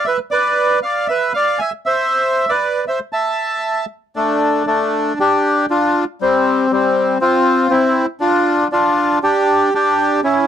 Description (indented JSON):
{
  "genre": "tango",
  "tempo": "118 BPM",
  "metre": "4/4",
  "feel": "rubato",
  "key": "A minor, D minor from 4.1 s",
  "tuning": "A4 = 440 Hz",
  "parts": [
    { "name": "bandoneon", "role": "solo", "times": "0.0-10.5 s", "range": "G3 to A5", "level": "-14 LUFS", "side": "equal", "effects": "none" }
  ],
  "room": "little or no reverb",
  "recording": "dry, close 1970s-style studio recording",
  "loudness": "-14 LUFS",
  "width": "side -9 dB against mid",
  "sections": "0.0-4.1 A section; 4.1-10.5 B section",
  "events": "none",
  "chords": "0.1 Bdim; 1.1 E5; 2.1 Am; 4.1 N.C.",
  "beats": "| 0.08 0.58 1.09 1.59 | 2.10 2.61 3.12 3.63 | 4.15 4.66 5.17 5.67 | 6.18 6.69 7.19 7.70 | 8.21 8.71 9.21 9.72 | 10.23"
}